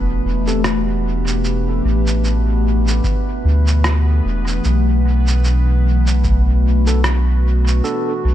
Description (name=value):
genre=ambient dub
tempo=75 BPM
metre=4/4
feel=swing 58% on 16ths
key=unclear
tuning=A4 = 440 Hz
part: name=warbly tape-like pad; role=sustained chords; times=0.0-8.3 s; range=B2 to G4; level=-22 LUFS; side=left 3 dB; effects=chorus, built-in reverb, phaser
part: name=soft dub sub bass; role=bass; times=0.0-8.3 s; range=E1 to D2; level=-15 LUFS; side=equal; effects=none
part: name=bubbling stepped-filter texture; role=texture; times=0.0-8.3 s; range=B3 to B4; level=-27 LUFS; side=right 5 dB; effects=chorus, built-in reverb
part: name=tine electric piano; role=stabs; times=0.5-0.6, 6.9-8.1 s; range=B3 to A4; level=-27 LUFS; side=right 1 dB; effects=medium stereo tremolo, dub echo
part: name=electronic shaker and rim click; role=drums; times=0.5-8.0 s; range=none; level=-25 LUFS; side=right 1 dB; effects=dub echo
part: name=electronic kick drum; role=drums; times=3.0-6.4 s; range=none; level=-22 LUFS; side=equal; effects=none
room=little or no reverb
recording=none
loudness=-14 LUFS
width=side -12 dB against mid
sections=0.0-8.3 A section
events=none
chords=0.0 A7(no3); 4.6 Bm7